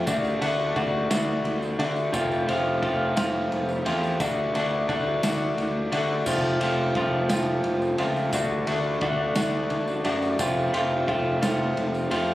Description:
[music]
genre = indie rock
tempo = 58 BPM (dotted quarters)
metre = 6/8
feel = straight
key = unclear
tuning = A4 = 441 Hz
[part]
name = electric guitar through a small old amp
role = riff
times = 0.0-12.3 s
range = F3 to F#4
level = -24 LUFS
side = left 1 dB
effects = none
[part]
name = fuzz picked electric bass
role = bass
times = 0.0-12.3 s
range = F1 to D3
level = -30 LUFS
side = equal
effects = overdrive
[part]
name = raw garage drum kit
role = drums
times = 0.1-12.3 s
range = crash cymbal, kick drum, ride cymbal, snare drum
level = -31 LUFS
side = right 1 dB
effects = none
[part]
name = tambourine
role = percussion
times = 0.1-12.0 s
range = none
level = -40 LUFS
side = right 2 dB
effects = none
[part]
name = chorused pulse-width pad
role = sustained chords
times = 6.3-12.3 s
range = F4 to A5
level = -36 LUFS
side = right 1 dB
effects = none
[sound]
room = moderate studio reverb, RT60 0.6 s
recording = recorded on a phone in the room, club reverb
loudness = -22 LUFS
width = side -15 dB against mid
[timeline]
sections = 0.0-12.3 A section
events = none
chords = 0.1 D; 2.1 F; 4.2 D; 6.3 F; 8.3 D; 10.4 F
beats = | 0.07 1.11 | 2.14 3.17 | 4.21 5.24 | 6.27 7.30 | 8.33 9.36 | 10.39 11.42

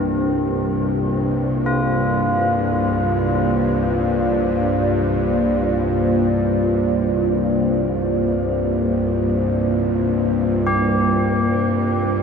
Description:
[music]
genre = dark ambient drone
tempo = free time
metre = none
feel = none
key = unclear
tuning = A4 = 440 Hz
[part]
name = dark analog pad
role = sustained chords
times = 0.0-12.2 s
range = G3 to D5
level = -20 LUFS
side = equal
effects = chorus, phaser, shimmer reverb
[part]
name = tubular bells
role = arpeggios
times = 0.0-12.2 s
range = C4 to G4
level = -26 LUFS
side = left 2 dB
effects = ping-pong delay, shimmer reverb
[part]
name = bowed-like drone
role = drone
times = 0.0-12.2 s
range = C2 to G2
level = -21 LUFS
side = equal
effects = built-in reverb
[part]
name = quartz singing bowl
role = texture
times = 0.0-12.2 s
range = D4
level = -31 LUFS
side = equal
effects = none
[sound]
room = wet huge ambient reverb, RT60 8.4 s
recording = nothing above 10.7 kHz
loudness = -17 LUFS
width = side -6 dB against mid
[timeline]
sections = 0.0-12.2 A section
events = none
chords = 0.0 Bbadd9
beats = free time

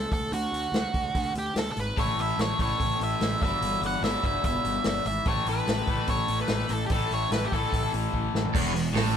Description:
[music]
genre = classic rock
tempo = 146 BPM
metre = 4/4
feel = straight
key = unclear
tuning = A4 = 440 Hz
[part]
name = octave-fuzz lead guitar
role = melody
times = 0.0-7.9 s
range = F#4 to F#5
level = -30 LUFS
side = right 3 dB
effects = distortion
[part]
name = fuzz picked electric bass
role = bass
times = 0.0-9.2 s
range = E1 to D2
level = -30 LUFS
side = equal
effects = overdrive
[part]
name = vintage drum kit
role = drums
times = 0.1-9.0 s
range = crash cymbal, hi-hat, kick drum, snare drum, toms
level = -30 LUFS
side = equal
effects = none
[part]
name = raw garage guitar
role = riff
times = 2.0-9.2 s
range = E2 to A3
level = -30 LUFS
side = left 5 dB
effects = overdrive
[part]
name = sludgy distorted guitar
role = riff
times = 8.5-9.2 s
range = E2 to A2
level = -28 LUFS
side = right 8 dB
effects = overdrive
[sound]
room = moderate studio reverb, RT60 0.5 s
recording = band playing live in one room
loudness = -24 LUFS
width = side -8 dB against mid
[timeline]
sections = 0.0-8.5 A section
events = drum fill 8.1-8.5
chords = 0.1 D; 2.0 A; 3.4 Em/G; 5.3 A5; 8.5 N.C.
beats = | 0.33 0.74 1.15 1.56 | 1.97 2.38 2.80 3.21 | 3.62 4.03 4.44 4.85 | 5.26 5.67 6.08 6.49 | 6.90 7.31 7.72 8.13 | 8.54 8.95

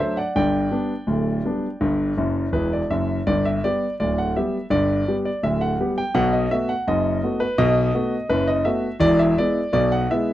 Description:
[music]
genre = ragtime piano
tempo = 83 BPM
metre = 2/4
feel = straight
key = G major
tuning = A4 = 440 Hz
[part]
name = warm concert grand piano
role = solo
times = 0.0-10.3 s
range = D1 to G5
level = -19 LUFS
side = equal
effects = none
[sound]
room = moderate booth ambience, RT60 0.2 s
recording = dry, close 1970s-style studio recording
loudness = -19 LUFS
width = side -13 dB against mid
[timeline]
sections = 0.0-3.3 A section; 3.3-10.3 B section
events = grand piano fill 2.2-3.3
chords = 0.3 G; 6.2 B7; 9.0 E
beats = | 0.35 1.08 | 1.81 2.54 | 3.27 3.99 | 4.71 5.44 | 6.16 6.88 | 7.60 8.32 | 9.03 9.75

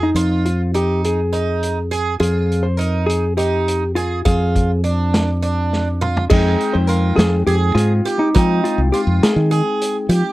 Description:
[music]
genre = progressive instrumental, band music in an uneven meter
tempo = 205 BPM (eighths)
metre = 7/8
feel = straight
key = F minor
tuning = A4 = 445 Hz
[part]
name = hollow-body jazz guitar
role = melody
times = 0.0-10.1 s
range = Eb4 to C5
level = -20 LUFS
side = left 1 dB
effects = none
[part]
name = picked twelve-string acoustic guitar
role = arpeggios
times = 0.0-10.3 s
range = D4 to Ab4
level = -23 LUFS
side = right 5 dB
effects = none
[part]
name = modern bright fingered electric bass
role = bass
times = 0.0-10.2 s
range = C2 to F3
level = -18 LUFS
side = equal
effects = none
[part]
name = vintage drum kit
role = drums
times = 0.2-10.2 s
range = crash cymbal, hi-hat, kick drum, snare drum, toms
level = -20 LUFS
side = equal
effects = none
[part]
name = overdriven tine electric piano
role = accompaniment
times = 6.3-10.3 s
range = Ab3 to G5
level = -24 LUFS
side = left 5 dB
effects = none
[sound]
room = little or no reverb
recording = dry, close 1970s-style studio recording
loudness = -15 LUFS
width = side -17 dB against mid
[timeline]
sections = 0.0-6.3 A section; 6.3-10.3 B section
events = drum fill 5.7-6.3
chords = 0.0 Ab5/F; 4.3 Fm6; 6.3 Fm7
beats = | 0.16 0.45 0.75 1.04 1.33 1.62 1.92 | 2.21 2.50 2.80 3.09 3.38 3.68 3.97 | 4.26 4.55 4.85 5.14 5.43 5.72 6.02 | 6.31 6.60 6.89 7.18 7.47 7.77 8.06 | 8.35 8.64 8.93 9.22 9.51 9.80 10.10

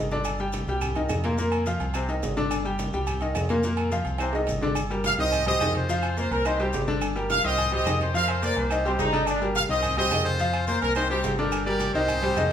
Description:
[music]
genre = latin, salsa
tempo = 213 BPM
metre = 4/4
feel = straight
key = unclear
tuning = A4 = 440 Hz
[part]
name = bright concert grand piano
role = accompaniment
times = 0.0-12.5 s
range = Bb2 to G5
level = -27 LUFS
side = left 1 dB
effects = none
[part]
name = fingered electric bass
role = bass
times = 0.0-12.5 s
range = G1 to F2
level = -30 LUFS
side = right 1 dB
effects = none
[part]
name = congas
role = percussion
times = 0.1-12.5 s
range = none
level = -35 LUFS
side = left 1 dB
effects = none
[part]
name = maracas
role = percussion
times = 0.1-12.5 s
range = none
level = -43 LUFS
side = left 4 dB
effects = none
[part]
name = agogo bells and timbales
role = percussion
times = 0.2-12.5 s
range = none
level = -34 LUFS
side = right 3 dB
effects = none
[part]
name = claves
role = percussion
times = 0.3-12.5 s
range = none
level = -40 LUFS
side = right 2 dB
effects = none
[part]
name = bright trumpet section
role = melody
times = 5.1-12.5 s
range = C4 to F5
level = -26 LUFS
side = equal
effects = none
[part]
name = brilliant trombone section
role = second line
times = 8.8-9.5 s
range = C4 to Eb4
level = -26 LUFS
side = equal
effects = none
[sound]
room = wet large studio reverb, RT60 0.8 s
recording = band playing live in one room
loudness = -22 LUFS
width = side -9 dB against mid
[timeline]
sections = 0.0-4.8 A section; 4.8-12.5 B section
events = drum fill 4.2-4.8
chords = 0.2 G5; 0.8 Cm; 1.4 Fsus4; 1.9 Cm; 2.5 G5; 3.1 Cm; 3.6 Fsus4; 4.2 Cm; 4.8 Gm; 5.3 Cm; 5.9 Fsus4; 6.5 Cm; 7.0 Gm; 7.6 Cm; 8.1 Fsus4; 8.7 Cm; 9.3 Gm; 9.8 Cm; 10.4 Fsus4; 11.0 Cm; 11.5 Gm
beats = | 0.25 0.53 0.81 1.09 | 1.38 1.66 1.94 2.22 | 2.51 2.79 3.07 3.35 | 3.63 3.92 4.20 4.48 | 4.76 5.04 5.33 5.61 | 5.89 6.17 6.45 6.73 | 7.02 7.30 7.58 7.86 | 8.14 8.42 8.71 8.99 | 9.27 9.55 9.83 10.11 | 10.40 10.68 10.96 11.24 | 11.52 11.81 12.09 12.37

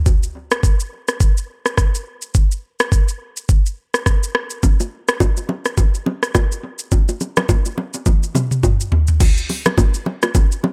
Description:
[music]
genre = afrobeats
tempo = 105 BPM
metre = 4/4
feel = swing 58% on 16ths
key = none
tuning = none
[part]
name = afro-pop drum kit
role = drums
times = 0.1-10.6 s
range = crash cymbal, hi-hat, kick drum, rim click, shaker, toms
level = -18 LUFS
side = equal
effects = overdrive
[part]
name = congas and bongos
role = percussion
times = 4.6-10.7 s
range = none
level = -23 LUFS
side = equal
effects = analog delay
[sound]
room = digital ambience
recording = echo-heavy mix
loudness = -18 LUFS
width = mono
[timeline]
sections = 0.1-9.2 A section; 9.2-10.7 B section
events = drum fill 8.1-9.2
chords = none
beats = | 0.06 0.63 1.20 1.78 | 2.35 2.92 3.49 4.06 | 4.63 5.20 5.78 6.35 | 6.92 7.49 8.06 8.63 | 9.20 9.78 10.35

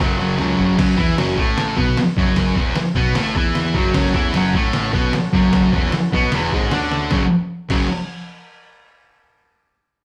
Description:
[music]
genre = garage rock duo or trio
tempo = 152 BPM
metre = 4/4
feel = straight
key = F# minor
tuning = A4 = 440 Hz
[part]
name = combo organ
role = sustained chords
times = 0.0-0.8, 3.9-7.3 s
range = C#4 to B5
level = -33 LUFS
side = equal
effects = none
[part]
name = thick fuzz guitar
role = riff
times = 0.0-7.9 s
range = E2 to E4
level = -20 LUFS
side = equal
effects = distortion
[part]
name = fuzz picked electric bass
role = bass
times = 0.0-7.9 s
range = E1 to F#2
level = -28 LUFS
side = equal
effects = overdrive
[part]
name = trip hop sampler-style drum kit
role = drums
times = 0.4-7.8 s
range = crash cymbal, hi-hat, kick drum, snare drum, toms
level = -24 LUFS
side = equal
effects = none
[sound]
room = wet studio reverb, RT60 0.8 s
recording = band playing live in one room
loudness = -18 LUFS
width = mono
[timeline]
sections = 0.8-7.1 A section; 7.1-8.7 B section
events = drum fill 0.4-0.8, 6.9; transistor combo organ fill 5.9-7.1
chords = 0.0 F#m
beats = 0.39 | 0.79 1.18 1.58 1.97 | 2.37 2.77 3.16 3.56 | 3.95 4.35 4.74 5.14 | 5.53 5.93 6.32 6.72 | 7.11 7.51

